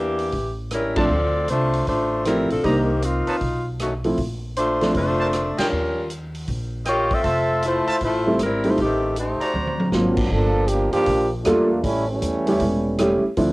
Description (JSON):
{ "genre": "jazz, big band swing", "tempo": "156 BPM", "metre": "4/4", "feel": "swing 65% on 8ths", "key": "unclear", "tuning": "A4 = 441 Hz", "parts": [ { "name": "bright saxophone section", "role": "melody", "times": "0.0-9.8 s", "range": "Eb3 to E5", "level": "-22 LUFS", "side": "left 1 dB", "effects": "cassette tape, plate reverb" }, { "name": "upright bass", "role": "bass", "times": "0.0-13.5 s", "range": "E1 to E2", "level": "-26 LUFS", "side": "equal", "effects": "none" }, { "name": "swinging big-band drum kit", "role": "drums", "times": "0.2-13.5 s", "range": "crash cymbal, hi-hat, kick drum, ride cymbal, rim click, snare drum, toms", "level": "-30 LUFS", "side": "equal", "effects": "cassette tape" }, { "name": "clear grand piano", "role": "accompaniment", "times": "1.0-4.9, 8.3-13.5 s", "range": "F3 to A4", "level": "-20 LUFS", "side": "right 1 dB", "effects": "cassette tape, plate reverb" }, { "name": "clear trumpet section", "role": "stabs", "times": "1.0-9.9 s", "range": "D4 to Bb5", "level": "-26 LUFS", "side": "right 1 dB", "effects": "cassette tape, plate reverb" }, { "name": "bright trombone section", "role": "second line", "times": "9.9-13.2 s", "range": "E3 to A4", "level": "-21 LUFS", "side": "right 1 dB", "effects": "cassette tape, plate reverb" } ], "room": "light reverb", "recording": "home recording on cassette", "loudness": "-19 LUFS", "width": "side -21 dB against mid", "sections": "0.0-10.3 A section; 10.3-13.5 B section", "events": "band accent 0.9, 5.5; drum fill 9.5-9.9; trombone section solo 10.3-13.5", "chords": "0.3 A7b13; 1.1 Dm7; 2.6 Cm7; 3.4 B7; 4.2 Bbmaj9; 5.7 Eb9; 7.2 Fmaj7; 8.8 Am7b5; 9.5 D7alt; 10.3 Gm9; 11.8 A7", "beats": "0.33 0.71 | 1.10 1.48 1.87 2.25 | 2.64 3.02 3.40 3.79 | 4.17 4.56 4.94 5.32 | 5.71 6.09 6.48 6.86 | 7.24 7.63 8.01 8.39 | 8.78 9.16 9.54 9.93 | 10.31 10.69 11.07 11.46 | 11.84 12.22 12.60 12.99 | 13.37" }